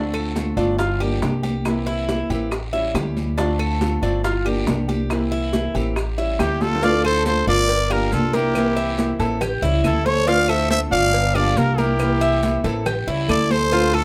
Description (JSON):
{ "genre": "latin, Cuban son and guajira", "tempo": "139 BPM", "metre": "4/4", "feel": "straight", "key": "D minor", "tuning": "A4 = 442 Hz", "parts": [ { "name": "nylon-string guitar", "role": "accompaniment", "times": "0.0-14.0 s", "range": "C3 to G4", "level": "-27 LUFS", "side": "equal", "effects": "none" }, { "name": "Cuban tres", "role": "arpeggios", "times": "0.0-14.0 s", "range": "D4 to F5", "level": "-27 LUFS", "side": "equal", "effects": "none" }, { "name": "upright bass", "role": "bass", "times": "0.0-14.0 s", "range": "G1 to D2", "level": "-26 LUFS", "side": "equal", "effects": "none" }, { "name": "claves", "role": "percussion", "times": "0.1-14.0 s", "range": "none", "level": "-36 LUFS", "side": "equal", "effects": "none" }, { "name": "congas", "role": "percussion", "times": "0.1-14.0 s", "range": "none", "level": "-30 LUFS", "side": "equal", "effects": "none" }, { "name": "maracas", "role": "percussion", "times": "0.1-13.9 s", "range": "none", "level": "-45 LUFS", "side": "equal", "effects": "none" }, { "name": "bongos and cowbell", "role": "percussion", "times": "0.4-13.9 s", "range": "none", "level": "-32 LUFS", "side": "equal", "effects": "none" }, { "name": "guiro", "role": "percussion", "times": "0.4-14.0 s", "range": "none", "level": "-40 LUFS", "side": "equal", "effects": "none" }, { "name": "growling trumpet", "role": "melody", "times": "6.4-14.0 s", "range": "G4 to F5", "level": "-24 LUFS", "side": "equal", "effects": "plate reverb" }, { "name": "bright alto saxophone", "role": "second line", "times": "6.4-14.0 s", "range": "E4 to D5", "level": "-29 LUFS", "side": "equal", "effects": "none" } ], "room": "light reverb", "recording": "none", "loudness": "-20 LUFS", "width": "mono", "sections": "0.0-6.8 A section; 6.8-14.0 B section", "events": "drum fill 6.6", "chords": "0.0 Dm7; 0.8 Gm7; 1.7 C7; 2.5 A7; 3.4 Dm7; 4.2 Gm7; 5.1 C7; 6.0 A7; 6.8 Dm7; 7.7 Gm7; 8.6 C7; 9.4 A7; 10.3 Dm7; 11.1 Gm7; 12.0 C7; 12.9 A7" }